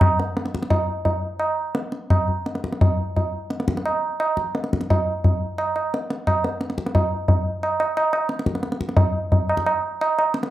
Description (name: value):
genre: indian classical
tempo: 174 BPM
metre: 3/4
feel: straight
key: none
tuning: none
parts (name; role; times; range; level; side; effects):
- tabla; percussion; 0.0-10.5 s; none; -20 LUFS; equal; none
room: light reverb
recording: dry, close 1970s-style studio recording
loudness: -20 LUFS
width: side -14 dB against mid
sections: 0.7-9.0 A section; 9.0-10.5 B section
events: speeding up 0.0-10.5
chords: none